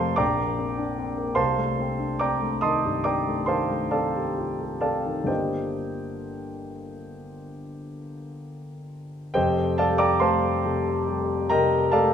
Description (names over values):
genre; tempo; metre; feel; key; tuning
classical, impressionist solo piano; 43-51 BPM (dotted quarters); 9/8; rubato; unclear; A4 = 440 Hz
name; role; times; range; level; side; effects
warm concert grand piano; solo; 0.0-12.1 s; F1 to Eb6; -23 LUFS; equal; none
room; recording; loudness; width
wet recital hall reverb, RT60 1.7 s; minimal, uncompressed stereo recording; -22 LUFS; side -8 dB against mid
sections
0.0-9.4 A section; 9.4-12.1 B section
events
none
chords
0.2 Bb69; 1.4 Cm6; 5.3 Gm7; 9.4 F9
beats
0.21 | 1.40 2.63 3.92 | 5.29 6.66 8.03 | 9.36 10.66 11.94